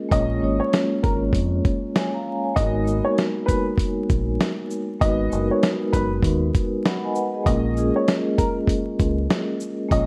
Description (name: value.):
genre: hip hop, boom-bap hip-hop.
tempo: 98 BPM.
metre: 4/4.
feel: swing 62% on 16ths.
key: unclear.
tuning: A4 = 440 Hz.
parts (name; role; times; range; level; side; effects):
vibraphone with medium mallets; accompaniment; 0.0-10.1 s; G#3 to B5; -26 LUFS; equal; high-pass filter, low-pass filter.
warm upright piano; melody; 0.1-10.1 s; A#4 to D#5; -28 LUFS; equal; high-pass filter, low-pass filter, slapback echo.
deep dub fingered electric bass; bass; 0.1-10.1 s; F#1 to E#2; -27 LUFS; equal; none.
dusty soul sampler-style drum kit; drums; 0.1-10.1 s; hi-hat, kick drum, shaker, snare drum; -25 LUFS; equal; none.
room: light reverb.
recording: vinyl crackle.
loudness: -22 LUFS.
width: mono.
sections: 0.0-10.1 A section.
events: none.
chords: 0.0 A#m7; 2.6 G#m7; 7.5 A#m7.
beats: | 0.11 0.73 1.34 1.95 | 2.56 3.17 3.79 4.40 | 5.01 5.62 6.24 6.85 | 7.46 8.07 8.69 9.30 | 9.91.